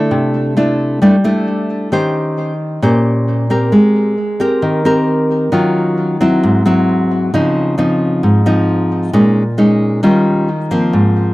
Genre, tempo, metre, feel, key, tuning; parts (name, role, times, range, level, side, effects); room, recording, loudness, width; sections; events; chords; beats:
bossa nova; 133 BPM; 4/4; straight; Ab major from 3.7 s; A4 = 440 Hz
nylon-string guitar; solo; 0.0-11.3 s; Ab2 to C5; -11 LUFS; equal; tape echo
light reverb; dry, close 1970s-style studio recording; -11 LUFS; side -19 dB against mid
0.0-3.7 A section; 3.7-11.3 B section
0.1 C69; 1.9 Eb6; 3.7 Abmaj9; 5.5 Ebm9; 6.4 Abaug7; 7.3 Dbmaj9; 9.1 Bbm7; 10.0 Eb9
| 0.11 0.56 1.01 1.47 | 1.92 2.37 2.82 3.27 | 3.72 4.17 4.62 5.07 | 5.52 5.97 6.42 6.88 | 7.33 7.78 8.23 8.68 | 9.13 9.58 10.03 10.48 | 10.94